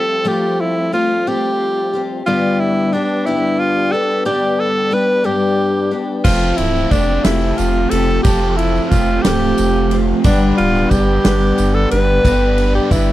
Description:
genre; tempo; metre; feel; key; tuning
folk rock and heartland rock; 60 BPM (dotted quarters); 6/8; straight; G mixolydian; A4 = 440 Hz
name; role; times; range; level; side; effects
clear tenor saxophone; melody; 0.0-13.1 s; D4 to B4; -17 LUFS; equal; none
picked twelve-string acoustic guitar; accompaniment; 0.0-13.1 s; G2 to G4; -19 LUFS; left 3 dB; none
tonewheel organ; sustained chords; 0.0-13.1 s; F3 to G4; -29 LUFS; right 2 dB; none
biting overdriven guitar; riff; 6.2-13.1 s; F3 to B4; -20 LUFS; right 3 dB; phaser
warm sub bass; bass; 6.2-13.1 s; C1 to G1; -18 LUFS; equal; none
natural country drum kit; drums; 6.2-13.1 s; crash cymbal, kick drum, ride cymbal, snare drum; -18 LUFS; equal; none
tambourine; percussion; 6.3-13.1 s; none; -35 LUFS; right 13 dB; none
room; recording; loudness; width
little or no reverb; dry, close 1970s-style studio recording; -13 LUFS; side -14 dB against mid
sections
0.0-13.1 A section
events
none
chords
0.0 Fadd9; 2.3 G; 6.3 Fadd9; 10.3 G

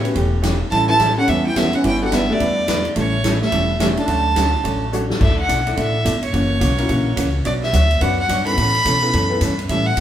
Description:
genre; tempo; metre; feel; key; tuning
country, western swing; 214 BPM; 4/4; swing 62% on 8ths; unclear; A4 = 442 Hz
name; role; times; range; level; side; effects
clear fiddle; melody; 0.0-10.0 s; C#5 to B5; -20 LUFS; right 1 dB; none
steel pan; second line; 0.0-4.9 s; A3 to E4; -22 LUFS; equal; none
tack piano; accompaniment; 0.0-9.4 s; A3 to E5; -27 LUFS; left 2 dB; none
upright bass; bass; 0.0-10.0 s; E1 to B2; -21 LUFS; equal; none
swinging big-band drum kit; drums; 0.0-10.0 s; crash cymbal, hi-hat, kick drum, ride cymbal, snare drum; -25 LUFS; left 1 dB; none
vintage hollow-body jazz guitar; accompaniment; 0.1-10.0 s; B2 to C#5; -23 LUFS; right 1 dB; none
room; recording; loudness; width
moderate large studio reverb, RT60 1.4 s; band playing live in one room; -15 LUFS; side -10 dB against mid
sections
0.0-5.2 A section; 5.2-10.0 B section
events
drum fill 4.9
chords
0.0 A13; 0.7 A9; 1.8 Em11/G; 3.0 A7; 4.1 Dmaj7; 5.2 Asus4; 6.3 F#7; 7.5 Bmadd9; 8.6 Aadd9

